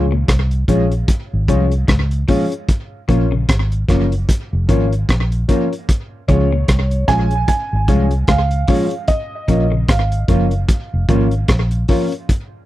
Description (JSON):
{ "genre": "roots reggae", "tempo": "75 BPM", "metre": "4/4", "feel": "swing 58% on 16ths", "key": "unclear", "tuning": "A4 = 440 Hz", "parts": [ { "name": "mellow electric guitar", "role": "accompaniment", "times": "0.0-12.1 s", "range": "F3 to F4", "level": "-22 LUFS", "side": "right 2 dB", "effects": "lush chorus, dub echo" }, { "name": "electric guitar at the edge of break-up", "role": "arpeggios", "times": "0.0-9.8 s", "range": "Ab2 to Db3", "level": "-25 LUFS", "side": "left 6 dB", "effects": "spring reverb" }, { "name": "reed electric piano", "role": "stabs", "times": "0.0-12.1 s", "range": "Db4 to Db5", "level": "-21 LUFS", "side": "left 7 dB", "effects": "none" }, { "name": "vintage muted fingered electric bass", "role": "bass", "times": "0.0-11.8 s", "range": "F1 to Db2", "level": "-16 LUFS", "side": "equal", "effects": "none" }, { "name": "crunchy breakbeat drum kit", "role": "drums", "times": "0.3-12.5 s", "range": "hi-hat, kick drum, rim click", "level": "-16 LUFS", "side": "equal", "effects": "slapback echo" }, { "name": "felt-muted upright piano", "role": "melody", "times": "6.3-11.5 s", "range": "Db5 to Ab5", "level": "-22 LUFS", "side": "right 4 dB", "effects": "dub echo" } ], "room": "little or no reverb", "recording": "dry, close 1970s-style studio recording", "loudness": "-14 LUFS", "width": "side -15 dB against mid", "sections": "0.0-12.7 A section", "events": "none", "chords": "0.0 Db; 2.7 Bbm; 5.9 Db; 9.1 Bbm", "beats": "0.28 1.09 1.89 | 2.69 3.49 4.29 5.09 | 5.89 6.69 7.49 8.29 | 9.09 9.89 10.69 11.49 | 12.29" }